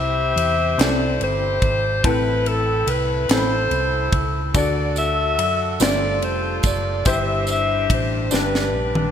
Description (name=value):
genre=slow gospel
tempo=48 BPM (dotted quarters)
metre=6/8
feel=straight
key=C major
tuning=A4 = 439 Hz
part: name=mellow saxophone section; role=melody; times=0.0-9.1 s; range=D4 to E5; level=-21 LUFS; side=left 1 dB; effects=digital delay
part: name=warm upright piano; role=accompaniment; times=0.0-9.1 s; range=G2 to B5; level=-26 LUFS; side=left 4 dB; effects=wide subtle chorus
part: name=hollow-body short-scale fingered electric bass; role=bass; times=0.0-9.1 s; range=F1 to F#2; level=-25 LUFS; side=right 1 dB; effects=none
part: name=crisp fusion drum kit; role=drums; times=0.4-9.1 s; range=kick drum, ride cymbal, snare drum, toms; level=-24 LUFS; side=right 1 dB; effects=gated reverb
part: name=tambourine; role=percussion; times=4.5-8.7 s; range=none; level=-32 LUFS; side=right 9 dB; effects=none
room=moderate plate reverb, RT60 2.9 s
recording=bright 1980s-style digital production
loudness=-17 LUFS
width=side -8 dB against mid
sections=0.0-9.1 A section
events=drum fill 8.3-9.1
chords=0.0 C; 2.0 Am; 4.5 D; 5.8 G9sus4; 7.1 C/G; 8.3 G